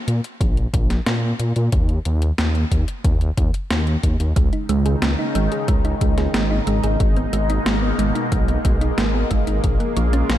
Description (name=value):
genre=synthwave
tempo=91 BPM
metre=4/4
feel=straight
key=G# dorian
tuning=A4 = 441 Hz
part: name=dark detuned saw bass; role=bass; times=0.1-10.4 s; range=G#1 to A#2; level=-20 LUFS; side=equal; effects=none
part: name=clean 12-bit digital drum machine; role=drums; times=0.1-10.4 s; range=hi-hat, snare drum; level=-25 LUFS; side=left 1 dB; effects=overdrive, small room ambience, gated reverb
part: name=electronic kick drum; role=drums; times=0.4-9.8 s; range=none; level=-20 LUFS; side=equal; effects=small room ambience
part: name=lush unison pad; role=sustained chords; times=4.4-10.4 s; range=B2 to E#4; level=-24 LUFS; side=left 1 dB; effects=chorus, phaser, sidechain pumping
part: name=thumb-piano-like synth pluck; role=arpeggios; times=4.4-10.4 s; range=E#3 to G#4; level=-25 LUFS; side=right 4 dB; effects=chorus, ping-pong delay
room=little or no reverb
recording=none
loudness=-17 LUFS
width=side -12 dB against mid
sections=0.0-10.4 A section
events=none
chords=0.0 N.C.; 4.4 C#sus2; 7.0 G#madd9; 9.6 A#m7